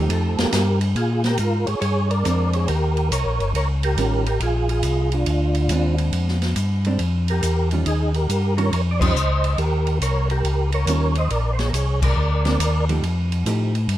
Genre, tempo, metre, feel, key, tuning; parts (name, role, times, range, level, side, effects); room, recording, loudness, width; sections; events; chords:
soul jazz organ trio; 139 BPM; 4/4; swing 66% on 8ths; Bb major; A4 = 440 Hz
percussive tonewheel organ; melody; 0.0-12.9 s; D4 to Eb5; -24 LUFS; right 1 dB; chorus vibrato, fast rotary speaker
vintage hollow-body jazz guitar; accompaniment; 0.0-13.7 s; Eb3 to G4; -28 LUFS; right 3 dB
mellow tonewheel organ; bass; 0.0-14.0 s; G1 to Bb2; -20 LUFS; left 1 dB; overdrive, chorus vibrato, slow rotary speaker
open jazz drum kit; drums; 0.1-14.0 s; crash cymbal, hi-hat, kick drum, ride cymbal, snare drum; -28 LUFS; equal
studio ambience; rough home demo mix; -18 LUFS; side -13 dB against mid
1.0-14.0 A section
band accent 8.9, 11.9
0.0 F9; 1.0 Bb9; 2.7 Eb9; 4.4 Bb9; 7.9 Eb9; 11.3 Bb9; 13.0 F9